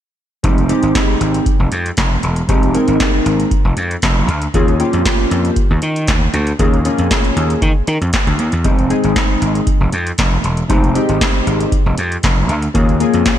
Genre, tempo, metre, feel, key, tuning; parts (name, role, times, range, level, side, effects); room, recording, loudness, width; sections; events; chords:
early-eighties boogie funk; 117 BPM; 4/4; straight; F minor; A4 = 440 Hz
chorused polysynth; accompaniment; 0.4-13.4 s; Ab3 to Bb4; -17 LUFS; left 1 dB; slapback echo
gritty slap bass; bass; 0.4-13.2 s; E1 to Eb3; -16 LUFS; equal; overdrive
booming analog drum machine; drums; 0.4-13.4 s; handclaps, hi-hat, kick drum, snare drum; -16 LUFS; equal
light reverb, digital ambience; -13 LUFS; side -11 dB against mid
0.4-13.4 A section
0.4 Fm9; 4.5 Eb7sus4; 8.6 Fm9; 12.7 Eb7sus4